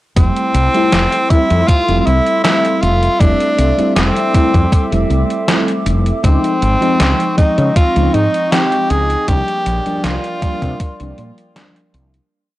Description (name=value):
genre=vaporwave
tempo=79 BPM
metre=4/4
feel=straight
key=F major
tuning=A4 = 440 Hz
part: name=clear tenor saxophone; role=melody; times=0.2-11.2 s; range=C4 to Ab4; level=-16 LUFS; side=equal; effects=tape echo
part: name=FM electric piano with soft pad layer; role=accompaniment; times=0.2-12.3 s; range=F3 to E5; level=-19 LUFS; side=equal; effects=tremolo, lush chorus
part: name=warbly tape-like pad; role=sustained chords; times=1.1-12.3 s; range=C4 to D6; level=-26 LUFS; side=equal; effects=chorus, built-in reverb, phaser, vintage 12-bit sampler grit
part: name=woody fretless electric bass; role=bass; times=0.2-12.2 s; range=F1 to Db3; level=-16 LUFS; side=equal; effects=analog chorus
part: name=electronic kick drum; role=drums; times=0.2-11.0 s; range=none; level=-12 LUFS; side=equal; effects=vintage 12-bit sampler grit, studio reverb
part: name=gated 80s digital drum machine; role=drums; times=0.2-12.3 s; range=hi-hat, snare drum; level=-19 LUFS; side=equal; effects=gated reverb, gated reverb snare, vintage 12-bit sampler grit, studio reverb
room=little or no reverb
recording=dry, gritty hardware recording, transformer saturation, cassette tape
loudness=-12 LUFS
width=side -16 dB against mid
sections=0.2-12.3 groove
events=fade-out 8.3-12.3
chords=0.2 Fmaj7; 6.2 Dbmaj9; 9.3 C9sus4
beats=| 0.17 0.93 1.69 2.44 | 3.20 3.96 4.72 5.48 | 6.24 7.00 7.76 8.52 | 9.28 10.04 10.80 11.56